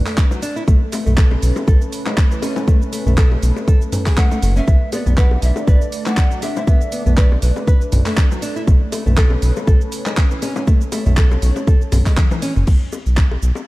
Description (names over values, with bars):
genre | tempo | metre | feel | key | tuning
afro house | 120 BPM | 4/4 | swing 55% on 16ths | unclear | A4 = 438 Hz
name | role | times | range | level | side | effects
breathy mellow large pan pipes | melody | 0.0-0.4, 4.2-8.4 s | B4 to F#5 | -29 LUFS | equal | tape echo
dark analog pad | sustained chords | 0.0-12.7 s | A3 to D5 | -28 LUFS | right 1 dB | chorus, sidechain pumping
nylon-string guitar | arpeggios | 0.1-12.6 s | E3 to B4 | -26 LUFS | left 1 dB | sidechain pumping, tape echo
house drum kit | drums | 0.1-13.7 s | crash cymbal, handclaps, hi-hat, shaker, toms | -24 LUFS | equal | none
electronic kick drum | drums | 0.2-13.3 s | none | -13 LUFS | equal | none
bongos | percussion | 0.3-13.6 s | none | -29 LUFS | left 4 dB | none
round analog bass | bass | 0.7-13.5 s | F#1 to B1 | -16 LUFS | equal | sidechain pumping
room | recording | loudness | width
little or no reverb | dark, warm production | -14 LUFS | side -19 dB against mid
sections
0.0-12.7 A section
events
drop 0.0-12.7; drum fill 12.2-12.7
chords
0.0 Bm7; 0.7 Aadd9/B; 4.7 Bm7; 8.7 Aadd9/B; 12.7 N.C.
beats
0.17 | 0.68 1.18 1.68 2.17 | 2.67 3.17 3.67 4.17 | 4.67 5.17 5.67 6.17 | 6.67 7.17 7.67 8.18 | 8.68 9.18 9.68 10.18 | 10.68 11.18 11.68 12.18 | 12.68 13.18